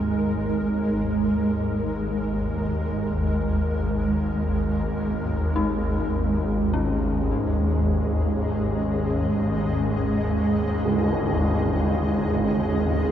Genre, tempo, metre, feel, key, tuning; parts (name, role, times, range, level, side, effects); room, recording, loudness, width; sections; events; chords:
dark ambient drone; free time; A4 = 440 Hz
granular cloud pad; sustained chords; 0.0-13.1 s; G#3 to D#5; -24 LUFS; right 2 dB; built-in reverb, shimmer reverb
dark detuned synth bell; arpeggios; 0.0-13.1 s; C#4 to D#4; -33 LUFS; left 5 dB; chorus, diffuse ambient delay, shimmer reverb
swarming drone; drone; 0.0-13.1 s; G#1 to D#2; -25 LUFS; left 1 dB; built-in reverb
tam-tam; percussion; 10.9-11.1 s; -27 LUFS; equal; low-pass filter on cymbals
wet cathedral reverb, RT60 6.5 s; in a vast, echoing space; -21 LUFS; side -10 dB against mid
0.0-13.1 A section
fade-in on synth drone 0.0-13.1; fade-in on synth bell 0.0-13.1
0.0 C#sus2/G#